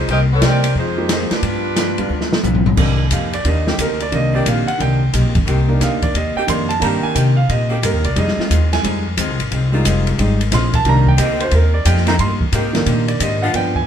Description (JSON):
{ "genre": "jazz, big band swing", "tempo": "178 BPM", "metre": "4/4", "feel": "swing 65% on 8ths", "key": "C minor", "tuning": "A4 = 440 Hz", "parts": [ { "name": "mellow saxophone section", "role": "melody", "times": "0.0-2.4 s", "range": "G3 to Eb5", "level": "-20 LUFS", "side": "equal", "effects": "none" }, { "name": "upright bass", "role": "bass", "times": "0.0-13.9 s", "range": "F1 to C3", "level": "-17 LUFS", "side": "equal", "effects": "none" }, { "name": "archtop guitar, miked and amplified", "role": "accompaniment", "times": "0.1-13.8 s", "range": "F2 to Ab4", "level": "-26 LUFS", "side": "left 2 dB", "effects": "none" }, { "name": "open jazz drum kit", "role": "drums", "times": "0.1-13.8 s", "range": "crash cymbal, hi-hat, kick drum, ride cymbal, snare drum, toms", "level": "-21 LUFS", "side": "equal", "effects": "none" }, { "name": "warm baby grand piano", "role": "accompaniment", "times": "1.0-13.9 s", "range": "Eb3 to C6", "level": "-20 LUFS", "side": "right 3 dB", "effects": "none" }, { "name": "warm saxophone section", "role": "sustained chords", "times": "3.7-13.5 s", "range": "Eb3 to G4", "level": "-25 LUFS", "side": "left 1 dB", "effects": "none" } ], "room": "wet club reverb, RT60 0.7 s", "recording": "minimal, uncompressed stereo recording", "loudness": "-14 LUFS", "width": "side -9 dB against mid", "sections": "0.0-2.8 A section; 2.8-13.9 B section", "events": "drum fill 2.1-2.8; grand piano solo 2.8-13.9", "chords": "0.1 Cm7; 0.8 Fm7; 1.4 G7; 2.8 Cm7; 8.2 Fm7; 10.8 Cm7", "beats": "| 0.08 0.41 0.75 1.09 | 1.43 1.76 2.10 2.44 | 2.78 3.11 3.45 3.79 | 4.12 4.46 4.80 5.13 | 5.47 5.81 6.14 6.48 | 6.82 7.15 7.49 7.83 | 8.16 8.50 8.83 9.17 | 9.51 9.84 10.18 10.51 | 10.85 11.19 11.52 11.86 | 12.19 12.53 12.87 13.20 | 13.54" }